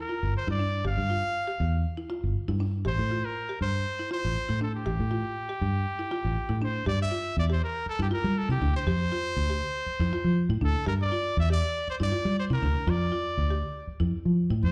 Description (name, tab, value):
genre	afrobeat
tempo	120 BPM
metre	4/4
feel	straight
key	G dorian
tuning	A4 = 440 Hz
part	bright trumpet	melody	0.0-14.7 s	G4 to F5	-34 LUFS	equal	slapback echo
part	marimba with soft mallets	arpeggios	0.0-14.6 s	D4 to G4	-39 LUFS	equal	slapback echo
part	fingered electric bass	bass	0.2-14.7 s	G1 to G3	-29 LUFS	equal	none
room	small room ambience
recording	live gig heard through the venue's PA, club reverb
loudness	-28 LUFS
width	mono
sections	0.0-6.9 A section; 6.9-14.7 B section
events	none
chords	0.0 G5; 2.9 Am7; 6.9 G5; 8.9 F5; 10.9 G5; 12.9 F5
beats	0.35 | 0.86 1.36 1.86 2.36 | 2.86 3.36 3.86 4.36 | 4.86 5.36 5.86 6.36 | 6.86 7.37 7.87 8.37 | 8.87 9.37 9.87 10.37 | 10.87 11.37 11.87 12.37 | 12.87 13.37 13.87 14.37